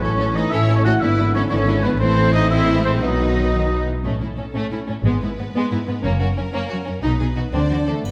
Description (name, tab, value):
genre	cinematic, heroic adventure film score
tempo	120 BPM (dotted quarters)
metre	6/8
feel	straight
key	unclear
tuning	A4 = 440 Hz
part	rich symphonic violin section	melody	0.0-8.1 s	G#4 to D#5	-36 LUFS	equal	none
part	warm oboe	second line	0.0-3.9 s	B4 to F#5	-29 LUFS	equal	none
part	warm symphonic violin section	second line	0.0-8.1 s	G#3 to D5	-30 LUFS	equal	none
part	warm symphonic viola section	accompaniment	0.0-7.9 s	D#3 to D#4	-28 LUFS	equal	none
part	dark trombone section	sustained chords	0.0-3.9 s	B2 to B3	-31 LUFS	equal	none
part	mellow French horn section	sustained chords	0.0-3.9, 7.5-8.1 s	D3 to F#4	-28 LUFS	equal	none
part	mellow trumpet	stabs	0.0-3.9 s	B4 to F#5	-28 LUFS	equal	none
part	clear symphonic cello section	bass	0.0-8.1 s	F#2 to F#4	-28 LUFS	equal	none
part	clear symphonic double bass section	bass	0.0-8.1 s	F#1 to D2	-23 LUFS	equal	none
part	triangle	percussion	8.1 s	none	-43 LUFS	equal	none
room	wet concert hall reverb, RT60 2.1 s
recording	none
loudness	-19 LUFS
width	mono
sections	0.0-4.0 A section; 4.0-8.1 B section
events	none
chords	0.0 A; 1.0 E7/G#; 2.0 Am; 3.0 B; 4.0 A; 5.0 E/G# (rootless); 6.0 F#; 7.0 B; 7.5 D7(no3)